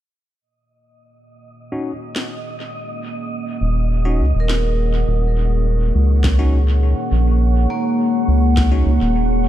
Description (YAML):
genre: ambient dub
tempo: 103 BPM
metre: 4/4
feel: straight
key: Eb minor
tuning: A4 = 440 Hz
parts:
  - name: deep dark ambient pad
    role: sustained chords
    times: 1.7-9.5 s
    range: Bb3 to Gb5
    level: -23 LUFS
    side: equal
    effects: chorus, built-in reverb
  - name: wind-like tuned noise texture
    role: texture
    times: 1.5-9.5 s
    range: Db5 to Eb5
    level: -33 LUFS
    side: equal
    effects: built-in reverb, wide subtle chorus
  - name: bell-like tine electric piano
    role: stabs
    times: 1.7-8.9 s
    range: Db4 to Gb4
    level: -29 LUFS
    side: left 1 dB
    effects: medium stereo tremolo, low-pass filter, dub echo
  - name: electronic snare drum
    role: drums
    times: 2.2-8.7 s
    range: none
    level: -29 LUFS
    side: equal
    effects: dub echo
  - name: round analog bass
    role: bass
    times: 3.6-9.5 s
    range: Eb1 to Db2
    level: -15 LUFS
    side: equal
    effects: none
  - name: vibraphone with medium mallets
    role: arpeggios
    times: 4.4-9.5 s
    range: Bb3 to Bb4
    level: -25 LUFS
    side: right 1 dB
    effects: tape echo
  - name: electronic kick drum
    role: drums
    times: 6.2-8.7 s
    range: none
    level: -23 LUFS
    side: equal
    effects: none
room: light reverb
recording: none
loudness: -15 LUFS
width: side -12 dB against mid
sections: 0.4-5.1 A section; 5.1-9.5 B section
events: filter sweep on ambient pad 0.4-5.1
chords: 0.4 Ebm7